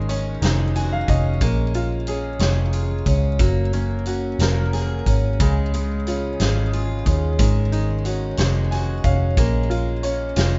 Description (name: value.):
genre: six-eight pop ballad.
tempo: 60 BPM (dotted quarters).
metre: 6/8.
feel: straight.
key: unclear.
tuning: A4 = 440 Hz.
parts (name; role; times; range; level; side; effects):
bright upright piano; accompaniment; 0.0-10.6 s; Db3 to Ab5; -30 LUFS; equal; none.
picked steel-string acoustic guitar; arpeggios; 0.0-10.6 s; Eb3 to Ab4; -30 LUFS; equal; delay.
vintage muted fingered electric bass; bass; 0.0-10.6 s; F1 to Eb2; -23 LUFS; equal; none.
huge arena drum kit; drums; 0.1-10.5 s; hi-hat, kick drum, snare drum; -27 LUFS; equal; none.
room: studio ambience.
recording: rough home demo mix, nothing above 7.8 kHz.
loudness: -21 LUFS.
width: mono.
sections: 0.0-10.6 A section.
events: upright piano fill 0.4-1.4, 8.4-9.4.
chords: 0.0 Ab7sus4; 1.4 Bbm7; 3.4 Gbadd9; 5.4 Db; 7.4 Ab7sus4; 9.4 Bbm7.